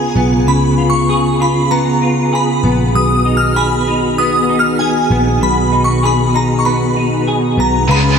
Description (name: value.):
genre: dream pop.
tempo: 97 BPM.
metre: 4/4.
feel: straight.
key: B lydian.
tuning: A4 = 440 Hz.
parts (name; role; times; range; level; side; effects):
shimmering bell with halo; melody; 0.0-8.2 s; G#5 to E#6; -16 LUFS; equal; ensemble chorus, digital delay.
mellow tonewheel organ; sustained chords; 0.0-8.2 s; C#3 to E#5; -18 LUFS; right 2 dB; fast rotary speaker.
clean electric guitar; arpeggios; 0.0-8.2 s; B2 to G#4; -16 LUFS; left 2 dB; ensemble chorus, digital delay.
vintage muted picked electric bass; bass; 0.0-8.2 s; A#1 to C#2; -18 LUFS; equal; none.
cranked stack guitar; accompaniment; 7.9-8.2 s; C#3 to G#4; -15 LUFS; right 1 dB; overdrive, tremolo, wide subtle chorus.
room: moderate huge ambient reverb, RT60 6.1 s.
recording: none.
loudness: -11 LUFS.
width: side -6 dB against mid.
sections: 0.0-7.9 A section.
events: none.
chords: 0.0 C#7; 2.9 B6.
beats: | 0.47 1.09 1.71 2.33 | 2.94 3.56 4.18 4.80 | 5.42 6.04 6.66 7.27 | 7.89.